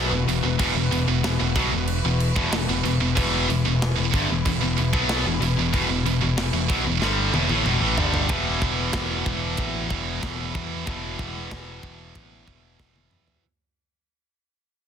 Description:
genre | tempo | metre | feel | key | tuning
heavy metal | 94 BPM | 4/4 | straight | E minor | A4 = 444 Hz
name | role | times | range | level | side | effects
rich studio string section | sustained chords | 0.0-8.3 s | E3 to B4 | -34 LUFS | equal | none
heavy high-gain guitar | riff | 0.0-13.4 s | E2 to B3 | -26 LUFS | right 12 dB | distortion
high-gain distorted guitar | riff | 0.0-13.4 s | E2 to B3 | -26 LUFS | left 9 dB | distortion
modern bright picked electric bass | bass | 0.0-13.4 s | E1 to E2 | -28 LUFS | equal | none
tight metal drum kit | drums | 0.3-13.4 s | crash cymbal, kick drum, ride cymbal, snare drum, toms | -28 LUFS | equal | soft clipping on kick
room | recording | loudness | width
light reverb | dense, heavily limited modern master | -20 LUFS | side -8 dB against mid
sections
0.0-8.3 A section; 8.3-13.4 B section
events
drum fill 7.0-8.3, 12.8-13.4; fade-out 8.3-13.4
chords
0.0 Em; 8.3 E5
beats
| 0.60 1.24 1.88 2.52 | 3.17 3.81 4.45 5.09 | 5.73 6.37 7.01 7.66 | 8.30 8.94 9.58 10.22 | 10.87 11.51 12.15 12.79

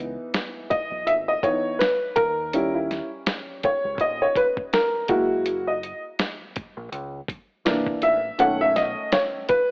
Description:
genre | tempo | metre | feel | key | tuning
hip hop, jazz-hop | 82 BPM | 4/4 | swing 58% on 16ths | unclear | A4 = 440 Hz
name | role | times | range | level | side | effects
warm upright piano | accompaniment | 0.0-9.7 s | D#3 to F#5 | -21 LUFS | equal | none
deep dub fingered electric bass | bass | 0.0-8.9 s | F#1 to D#2 | -37 LUFS | equal | none
dusty soul sampler-style drum kit | drums | 0.3-9.7 s | hi-hat, kick drum, snare drum | -27 LUFS | equal | cassette tape
room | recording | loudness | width
light reverb, digital ambience | home recording on cassette, AM radio sound | -21 LUFS | side -28 dB against mid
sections
0.0-9.7 A section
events
upright piano solo 0.0-9.7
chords
0.0 C#m9; 2.2 D#7b9; 5.1 F#9; 7.7 C9; 8.4 B9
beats
0.34 1.07 1.80 | 2.54 3.27 4.00 4.73 | 5.46 6.19 6.92 7.66 | 8.39 9.12

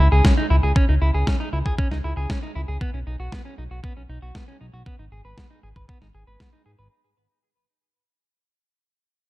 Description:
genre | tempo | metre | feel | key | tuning
italo disco | 117 BPM | 4/4 | straight | C# minor | A4 = 438 Hz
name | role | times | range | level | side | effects
clean electric guitar | arpeggios | 0.0-6.9 s | B3 to B4 | -28 LUFS | right 1 dB | low-pass filter, digital delay
chorused synth bass | bass | 0.0-6.9 s | G#1 to G#2 | -20 LUFS | equal | none
electronic kick drum | drums | 0.2-6.5 s | none | -22 LUFS | equal | overdrive
electronic snare drum | drums | 0.2-6.5 s | none | -28 LUFS | left 1 dB | overdrive
room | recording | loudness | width
light reverb | dark, warm production | -19 LUFS | side -18 dB against mid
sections
0.0-6.9 A section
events
fade-out 0.0-6.9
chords
0.0 C#sus2; 2.8 Badd9; 4.9 G#m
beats
0.25 | 0.76 1.27 1.78 2.30 | 2.81 3.32 3.84 4.35 | 4.86 5.38 5.89 6.40

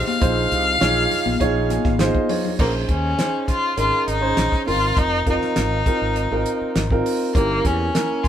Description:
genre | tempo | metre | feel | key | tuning
electric jazz fusion | 101 BPM | 4/4 | straight | Bb dorian | A4 = 440 Hz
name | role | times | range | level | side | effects
rich violin | melody | 0.0-8.3 s | Bb3 to F5 | -22 LUFS | left 2 dB | none
warm grand piano | accompaniment | 0.0-8.3 s | Bb3 to Ab5 | -23 LUFS | right 2 dB | none
mellow fretless electric bass | bass | 0.0-7.9 s | F1 to E2 | -25 LUFS | equal | none
congas | percussion | 0.1-2.6 s | none | -26 LUFS | left 6 dB | none
damped 70s drum kit | drums | 0.2-8.3 s | crash cymbal, hi-hat, kick drum, snare drum | -23 LUFS | equal | none
room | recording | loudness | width
moderate studio reverb, RT60 0.5 s | band playing live in one room | -17 LUFS | side -10 dB against mid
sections
0.0-2.6 A section; 2.6-8.3 B section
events
grand piano fill 1.4-2.6; drum fill 1.8-2.6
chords
0.2 Dbmaj7/Bb; 2.6 Bbm11; 4.7 Ab69; 7.3 Gdim7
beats
| 0.21 0.81 1.40 2.00 | 2.59 3.18 3.78 4.37 | 4.97 5.56 6.16 6.75 | 7.35 7.94

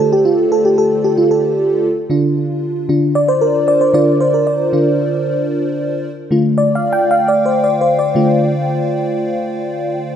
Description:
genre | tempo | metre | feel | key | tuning
pop | 114 BPM | 4/4 | straight | D minor | A4 = 437 Hz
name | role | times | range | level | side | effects
FM electric piano with soft pad layer | solo | 0.0-10.2 s | D3 to G5 | -12 LUFS | equal | chorus, tape echo
room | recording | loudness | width
moderate lush hall reverb, RT60 2.7 s | none | -13 LUFS | side -9 dB against mid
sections
0.0-10.2 A section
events
FM electric piano solo 0.0-10.2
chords
0.0 Dm; 1.8 Dm7; 6.0 Dm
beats
0.26 0.79 1.31 | 1.84 2.37 2.89 3.42 | 3.94 4.47 5.00 5.52 | 6.05 6.58 7.10 7.63 | 8.15 8.68 9.21 9.73

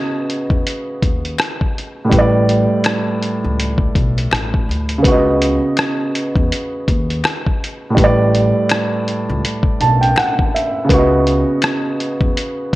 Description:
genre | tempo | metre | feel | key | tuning
lo-fi hip hop | 82 BPM | 4/4 | swing 60% on 16ths | unclear | A4 = 440 Hz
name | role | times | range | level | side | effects
dark upright piano | accompaniment | 0.0-12.8 s | A2 to A5 | -16 LUFS | right 1 dB | low-pass filter
lo-fi sampler-style drum kit | drums | 0.3-12.8 s | hi-hat, kick drum, rim click | -18 LUFS | left 1 dB | none
upright bass | bass | 0.5-12.8 s | A1 to E2 | -19 LUFS | left 1 dB | none
finger snaps | percussion | 1.4-11.8 s | none | -28 LUFS | left 8 dB | none
room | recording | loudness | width
moderate spring reverb, RT60 2.4 s | cassette tape | -14 LUFS | side -17 dB against mid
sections
0.0-5.0 A section; 5.0-12.8 B section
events
none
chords
0.0 C#9sus4; 2.1 A9sus4; 5.0 C#9sus4; 8.0 A9sus4; 10.9 C#9sus4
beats
0.65 1.39 | 2.12 2.85 3.58 4.31 | 5.04 5.78 6.51 7.24 | 7.97 8.70 9.43 10.16 | 10.90 11.63 12.36

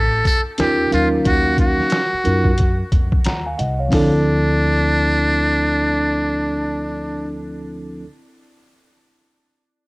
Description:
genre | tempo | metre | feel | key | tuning
hip hop, jazz-hop | 90 BPM | 4/4 | swing 62% on 16ths | unclear | A4 = 441 Hz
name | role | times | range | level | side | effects
trumpet with metal mute | melody | 0.0-7.4 s | D4 to A4 | -20 LUFS | equal | cassette tape
upright bass | bass | 0.0-8.0 s | A1 to Gb2 | -22 LUFS | equal | none
trip hop sampler-style drum kit | drums | 0.3-4.1 s | hi-hat, kick drum, snare drum | -19 LUFS | equal | cassette tape
mellow tine electric piano | accompaniment | 0.6-8.1 s | F3 to Bb5 | -21 LUFS | right 1 dB | medium stereo tremolo, cassette tape
room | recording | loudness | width
light reverb, studio reverb | home recording on cassette | -15 LUFS | side -23 dB against mid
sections
0.0-3.9 A section; 3.9-6.6 B section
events
none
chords
0.0 Dmadd9 (rootless); 0.9 Ebm9; 3.9 Dm9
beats
0.58 | 1.25 1.92 2.58 3.25 | 3.92 4.58 5.25 5.92

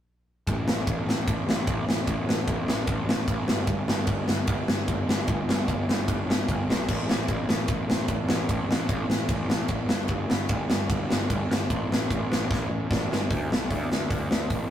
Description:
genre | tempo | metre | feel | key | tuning
punk rock | 150 BPM | 4/4 | straight | unclear | A4 = 441 Hz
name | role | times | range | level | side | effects
fuzz picked electric bass | bass | 0.5-14.7 s | G1 to D2 | -29 LUFS | equal | overdrive
big rock drum kit | drums | 0.5-14.6 s | crash cymbal, hi-hat, kick drum, ride cymbal, snare drum | -25 LUFS | equal | none
room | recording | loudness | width
light reverb | rough rehearsal-room recording, tube saturation, faint mains hum | -24 LUFS | side -11 dB against mid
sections
0.5-13.3 A section; 13.3-14.7 B section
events
drum fill 12.5-13.3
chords
none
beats
| 0.47 0.87 1.27 1.67 | 2.07 2.47 2.87 3.27 | 3.68 4.08 4.48 4.88 | 5.28 5.68 6.08 6.48 | 6.88 7.29 7.69 8.09 | 8.49 8.89 9.29 9.69 | 10.09 10.49 10.89 11.29 | 11.70 12.10 12.50 12.90 | 13.30 13.70 14.10 14.50

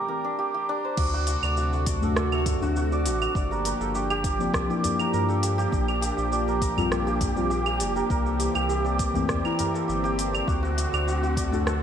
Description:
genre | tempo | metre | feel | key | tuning
organic downtempo | 101 BPM | 4/4 | straight | unclear | A4 = 440 Hz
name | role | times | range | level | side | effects
santur | arpeggios | 0.0-11.8 s | D4 to D5 | -28 LUFS | right 2 dB | ping-pong delay, shimmer reverb
warm analog pad | sustained chords | 1.0-11.8 s | C3 to G4 | -30 LUFS | equal | chorus, sidechain pumping, shimmer reverb
warm sub bass | bass | 1.0-11.8 s | F1 to G2 | -28 LUFS | equal | none
electronic kick drum | drums | 1.0-11.5 s | none | -29 LUFS | equal | none
organic electronic drum kit | drums | 1.0-11.8 s | claves, crash cymbal, hi-hat, rim click, shaker | -31 LUFS | right 1 dB | none
muted felt-like synth keys | accompaniment | 2.0-11.7 s | E3 to F#4 | -32 LUFS | left 4 dB | chorus, sidechain pumping, ping-pong delay, shimmer reverb
udu | percussion | 2.0-11.6 s | none | -34 LUFS | equal | none
room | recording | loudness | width
moderate plate reverb, RT60 2.6 s | bright 1980s-style digital production | -23 LUFS | side -8 dB against mid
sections
1.0-11.8 A section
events
break 0.0-1.0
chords
0.0 C7(no3); 1.0 D7; 3.4 Gm7; 5.7 Bb6; 8.1 C7; 10.5 D7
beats
0.38 | 0.98 1.57 2.16 2.76 | 3.35 3.95 4.54 5.13 | 5.73 6.32 6.92 7.51 | 8.10 8.70 9.29 9.89 | 10.48 11.07 11.67

